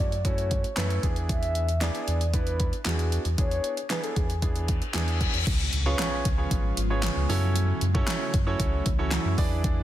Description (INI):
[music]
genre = dance-pop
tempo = 115 BPM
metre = 4/4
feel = straight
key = F# minor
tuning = A4 = 440 Hz
[part]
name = mellow horn-like synth lead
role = melody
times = 0.0-4.9 s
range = G#4 to E5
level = -33 LUFS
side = left 1 dB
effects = chorus, tape echo
[part]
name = warm concert grand piano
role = accompaniment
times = 0.0-9.8 s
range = A3 to D5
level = -32 LUFS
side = right 3 dB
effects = sidechain pumping
[part]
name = sub bass with octave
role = bass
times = 0.0-9.8 s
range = G#1 to F#2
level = -27 LUFS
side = equal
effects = sidechain pumping
[part]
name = pop drum kit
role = drums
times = 0.1-9.8 s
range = crash cymbal, handclaps, hi-hat, kick drum, snare drum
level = -28 LUFS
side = equal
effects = overdrive
[part]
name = reverse cymbal and impact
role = sound effects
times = 4.7-7.6 s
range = none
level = -34 LUFS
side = left 2 dB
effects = none
[part]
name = ethereal airy pad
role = sustained chords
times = 6.2-9.8 s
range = C#3 to E#4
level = -35 LUFS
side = equal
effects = ensemble chorus, built-in reverb, sidechain pumping
[sound]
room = light reverb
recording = dense, heavily limited modern master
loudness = -24 LUFS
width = side -13 dB against mid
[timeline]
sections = 0.0-5.5 A section; 5.5-9.8 B section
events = reverse cymbal 4.7-5.5; drop 5.5-9.8; impact 5.5-7.6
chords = 0.0 F#m7; 1.0 E7; 5.5 C#7; 7.3 F#m7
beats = 0.25 0.77 | 1.29 1.82 2.34 2.86 | 3.38 3.90 4.43 4.95 | 5.47 5.99 6.51 7.03 | 7.56 8.08 8.60 9.12 | 9.64